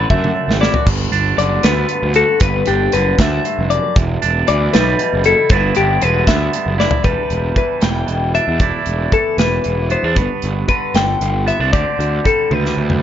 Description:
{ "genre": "math rock and midwest emo", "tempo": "77 BPM (dotted quarters)", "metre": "6/8", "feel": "straight", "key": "G major", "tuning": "A4 = 440 Hz", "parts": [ { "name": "twangy electric guitar", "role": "accompaniment", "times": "0.0-13.0 s", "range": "E2 to G4", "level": "-21 LUFS", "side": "right 10 dB", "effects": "none" }, { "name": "twelve-string electric guitar", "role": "arpeggios", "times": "0.0-13.0 s", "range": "G4 to G5", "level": "-18 LUFS", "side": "left 6 dB", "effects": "none" }, { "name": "fuzz picked electric bass", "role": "bass", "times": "0.0-13.0 s", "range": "E1 to F#2", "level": "-18 LUFS", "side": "equal", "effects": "overdrive" }, { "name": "modern studio drum kit", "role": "drums", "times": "0.1-13.0 s", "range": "crash cymbal, hi-hat, kick drum, snare drum, toms", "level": "-18 LUFS", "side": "right 1 dB", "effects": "none" } ], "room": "light reverb", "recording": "nothing above 7.5 kHz", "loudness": "-13 LUFS", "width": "side -10 dB against mid", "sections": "0.0-7.1 A section; 7.1-13.0 B section", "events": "drum fill 0.1-0.9, 6.8, 12.5-13.0", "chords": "0.0 Bm7 (rootless); 0.9 Gmaj9; 4.0 Em11; 5.5 G6; 7.1 Em7; 8.6 C69/E; 10.2 G; 11.7 D7sus4" }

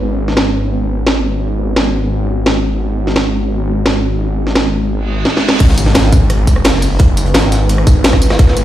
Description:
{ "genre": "dark technical drum and bass", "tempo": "172 BPM", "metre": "4/4", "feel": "straight", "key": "G# minor", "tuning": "A4 = 440 Hz", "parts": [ { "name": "swarming drone", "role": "sustained chords", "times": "0.0-8.6 s", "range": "G#3 to B4", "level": "-20 LUFS", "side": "right 1 dB", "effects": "built-in reverb, sidechain pumping" }, { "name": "snarling distorted saw bass", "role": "bass", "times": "0.0-8.6 s", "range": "F#1 to G#1", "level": "-15 LUFS", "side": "equal", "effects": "distortion, sidechain pumping" }, { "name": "drum and bass drum kit", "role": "drums", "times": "0.3-8.6 s", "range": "crash cymbal, hi-hat, rim click, snare drum, tambourine", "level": "-14 LUFS", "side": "equal", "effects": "overdrive, low-pass filter on snare, low-pass filter on hats, low-pass filter on cymbals, low-pass filter on perc" }, { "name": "reverse cymbal and impact", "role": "sound effects", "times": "5.1-7.0 s", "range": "none", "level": "-20 LUFS", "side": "equal", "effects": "none" }, { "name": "crunchy breakbeat drum kit", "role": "drums", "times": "5.6-8.6 s", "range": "hi-hat, snare drum", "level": "-22 LUFS", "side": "equal", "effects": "high-pass filter on hats, high-pass filter on snare, high-pass filter on room" }, { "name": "electronic kick drum", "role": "drums", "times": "5.6-8.5 s", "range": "none", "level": "-9 LUFS", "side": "equal", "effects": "overdrive" } ], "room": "light reverb", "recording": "played on a big sound system in a bare room, large studio reverb", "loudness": "-11 LUFS", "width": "side -12 dB against mid", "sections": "0.0-5.6 A section; 5.6-8.6 B section", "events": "reverse cymbal 5.1-5.6; drum fill 5.3-5.6; drop 5.6-8.6; impact 5.6-7.0", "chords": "0.0 G#m" }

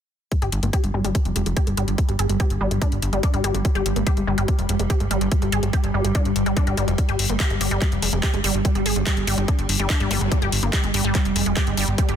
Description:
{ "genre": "psychedelic trance", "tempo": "144 BPM", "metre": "4/4", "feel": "straight", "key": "unclear", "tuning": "A4 = 440 Hz", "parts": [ { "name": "evolving wavetable pad", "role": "sustained chords", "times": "0.9-12.2 s", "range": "G3", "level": "-28 LUFS", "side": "right 1 dB", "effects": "ensemble chorus, built-in reverb, phaser, sidechain pumping" }, { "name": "wide unison pluck", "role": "riff", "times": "0.3-12.1 s", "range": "G3 to Ab4", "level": "-27 LUFS", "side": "moving between left 6 dB and right 7 dB", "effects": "auto-pan, sidechain pumping, dub echo" }, { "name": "drum and bass drum kit", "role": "drums", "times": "0.3-12.2 s", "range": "handclaps, hi-hat", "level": "-27 LUFS", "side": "left 2 dB", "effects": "overdrive" }, { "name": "electronic kick drum", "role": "drums", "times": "0.3-12.1 s", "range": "none", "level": "-21 LUFS", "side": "equal", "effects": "overdrive" }, { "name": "plucky analog bass", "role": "bass", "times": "0.4-12.2 s", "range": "F1 to G1", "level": "-23 LUFS", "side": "equal", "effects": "none" }, { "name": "zap", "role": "sound effects", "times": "10.1-10.2 s", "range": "none", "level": "-33 LUFS", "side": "equal", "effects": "none" } ], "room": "little or no reverb", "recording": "dense, heavily limited modern master", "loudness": "-19 LUFS", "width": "side -9 dB against mid", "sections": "0.3-12.2 A section", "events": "filter sweep on synth arpeggio sound 0.3-12.2", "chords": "0.3 G5" }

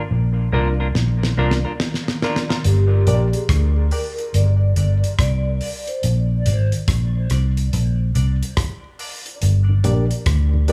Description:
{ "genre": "dub reggae", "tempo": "71 BPM", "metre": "4/4", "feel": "swing 63% on 16ths", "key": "G phrygian", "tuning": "A4 = 440 Hz", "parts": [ { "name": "semi-hollow electric guitar", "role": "accompaniment", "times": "0.0-2.6 s", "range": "Bb3 to Bb4", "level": "-31 LUFS", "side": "equal", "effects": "high-pass filter, dub echo" }, { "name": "vintage muted fingered electric bass", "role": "bass", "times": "0.1-10.7 s", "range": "G1 to D2", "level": "-19 LUFS", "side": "equal", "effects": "none" }, { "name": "reed electric piano", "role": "stabs", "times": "0.5-10.7 s", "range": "D4 to D5", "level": "-32 LUFS", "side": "equal", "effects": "high-pass filter, dub echo" }, { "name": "damped 70s drum kit", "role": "drums", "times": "1.0-10.7 s", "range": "hi-hat, kick drum, rim click, snare drum", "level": "-26 LUFS", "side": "equal", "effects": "none" }, { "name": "vibraphone with soft mallets", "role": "melody", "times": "2.7-6.0 s", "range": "G4 to D5", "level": "-31 LUFS", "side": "equal", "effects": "dub echo" }, { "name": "mellow tonewheel organ", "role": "accompaniment", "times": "2.9-10.7 s", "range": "G2 to D4", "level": "-30 LUFS", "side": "equal", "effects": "chorus vibrato, slow rotary speaker, high-pass filter" } ], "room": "small room ambience", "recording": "none", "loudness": "-19 LUFS", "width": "mono", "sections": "0.0-2.6 A section; 2.6-10.7 B section", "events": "break 0.0-2.6; filter sweep 0.0-9.4; drum fill 0.9-2.6", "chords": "0.0 Bb; 2.6 Gm; 6.0 Bb; 9.4 Gm" }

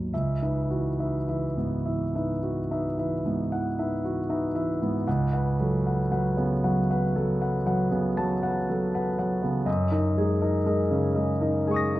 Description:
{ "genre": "classical, impressionist solo piano", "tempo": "34-41 BPM (dotted quarters)", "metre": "9/8", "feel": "rubato", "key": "C# minor", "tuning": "A4 = 439 Hz", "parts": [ { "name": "warm concert grand piano", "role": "solo", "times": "0.0-12.0 s", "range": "C#2 to A#6", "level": "-24 LUFS", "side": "equal", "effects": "none" } ], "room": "moderate recital hall reverb, RT60 1.7 s", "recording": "close, detailed microphones", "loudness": "-24 LUFS", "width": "side -16 dB against mid", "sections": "0.1-12.0 A section", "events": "none", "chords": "0.1 C#m11; 5.1 A69/C#; 9.7 F#69" }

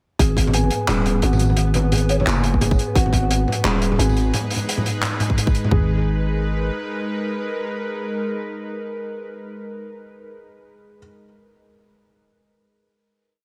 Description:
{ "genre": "half-time drum and bass", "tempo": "174 BPM", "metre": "4/4", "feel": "swing 60% on 16ths, half-time", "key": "G# minor", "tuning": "A4 = 440 Hz", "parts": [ { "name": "felt-muted upright piano", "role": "arpeggios", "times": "0.2-5.9 s", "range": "F#4 to G#5", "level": "-32 LUFS", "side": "equal", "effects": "tape echo" }, { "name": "growling 808-style bass", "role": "bass", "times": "0.2-6.7 s", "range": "D#1 to G#1", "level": "-22 LUFS", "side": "equal", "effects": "none" }, { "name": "crunchy breakbeat drum kit", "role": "drums", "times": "0.2-5.7 s", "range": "handclaps, hi-hat, tambourine, toms", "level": "-24 LUFS", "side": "equal", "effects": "none" }, { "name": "drum and bass drum kit", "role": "drums", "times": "0.2-0.5, 2.5-3.2, 5.3-5.8 s", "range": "kick drum, toms", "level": "-22 LUFS", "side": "equal", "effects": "overdrive" }, { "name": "pulsing gated texture", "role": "texture", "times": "0.2-4.3 s", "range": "B3 to B4", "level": "-34 LUFS", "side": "equal", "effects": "chorus, built-in reverb" }, { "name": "mellow hollow concert flute", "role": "melody", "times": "2.1-2.2 s", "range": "C#5", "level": "-32 LUFS", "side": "equal", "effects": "dub echo" }, { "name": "bowed-like drone", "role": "sustained chords", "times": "4.0-9.1 s", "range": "G#3 to B4", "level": "-30 LUFS", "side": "equal", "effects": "built-in reverb, vintage 12-bit sampler grit, sidechain pumping" } ], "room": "light reverb", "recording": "none", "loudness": "-20 LUFS", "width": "mono", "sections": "0.2-5.7 drop; 5.7-8.5 final chord", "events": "drop 0.2-5.7", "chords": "0.2 G#m" }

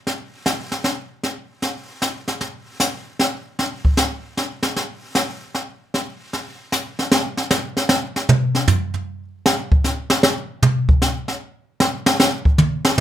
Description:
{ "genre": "jazz", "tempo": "153 BPM", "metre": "3/4", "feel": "swing 67% on 8ths", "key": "none", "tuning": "none", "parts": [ { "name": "jazz brush drum kit", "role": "drums", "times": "0.1-13.0 s", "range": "brushed snare drum, hi-hat, kick drum, snare drum, toms", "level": "-17 LUFS", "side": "equal", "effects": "none" } ], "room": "moderate studio ambience, RT60 0.5 s", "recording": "none", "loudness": "-18 LUFS", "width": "side -11 dB against mid", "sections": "0.0-7.1 A section; 7.1-13.0 B section", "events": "drum solo 7.1-13.0", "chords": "none" }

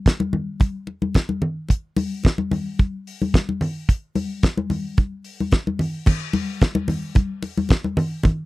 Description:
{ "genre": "disco", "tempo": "110 BPM", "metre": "4/4", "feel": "swing 56% on 16ths", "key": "none", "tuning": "none", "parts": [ { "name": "damped 70s drum kit", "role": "drums", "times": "0.1-8.4 s", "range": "crash cymbal, hi-hat, kick drum, snare drum", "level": "-17 LUFS", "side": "equal", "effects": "none" }, { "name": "congas", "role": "percussion", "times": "0.2-8.4 s", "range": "none", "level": "-24 LUFS", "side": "left 2 dB", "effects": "none" } ], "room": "light reverb", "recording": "dry, close 1970s-style studio recording", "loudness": "-20 LUFS", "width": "side -19 dB against mid", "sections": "0.0-6.1 A section; 6.1-8.5 B section", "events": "none", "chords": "none" }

